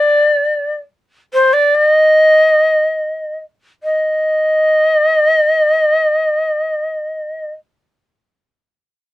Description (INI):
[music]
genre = hawaiian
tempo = free time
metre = none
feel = none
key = unclear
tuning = A4 = 440 Hz
[part]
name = shakuhachi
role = solo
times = 0.0-7.5 s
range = C5 to Eb5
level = -11 LUFS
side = equal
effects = none
[sound]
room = light reverb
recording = dry, close 1970s-style studio recording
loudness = -11 LUFS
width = side -16 dB against mid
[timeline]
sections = 0.0-3.8 A section; 3.8-8.3 B section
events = slowing down 0.0-3.8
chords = none